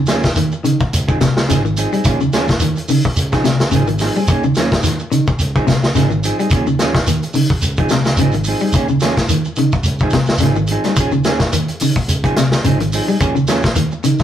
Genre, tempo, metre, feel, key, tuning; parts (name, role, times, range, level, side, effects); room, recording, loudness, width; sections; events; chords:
afrobeat; 107 BPM; 4/4; swing 56% on 16ths; A4 = 440 Hz
clean electric guitar; arpeggios; 0.0-14.2 s; C3 to G3; -17 LUFS; equal
fingered electric bass; bass; 0.0-14.2 s; Ab1 to Eb3; -23 LUFS; equal
mellow electric guitar; stabs; 0.1-14.2 s; F3 to Ab4; -21 LUFS; right 3 dB
vintage drum kit; drums; 0.1-14.2 s; hi-hat, kick drum, snare drum; -18 LUFS; left 1 dB
shekere; percussion; 0.1-14.2 s; -22 LUFS; right 1 dB
wet studio ambience, RT60 0.5 s; rough rehearsal-room recording, warm saturation; -13 LUFS; side -10 dB against mid
0.0-14.2 A section
0.0 Eb9sus4; 0.9 Dbmaj9; 2.0 Eb9sus4; 3.2 Dbmaj9; 4.3 Eb9sus4; 5.4 Dbmaj9; 6.5 Eb9sus4; 7.6 Dbmaj9; 8.7 Eb9sus4; 9.9 Dbmaj9; 11.0 Eb9sus4; 12.1 Dbmaj9; 13.2 Eb9sus4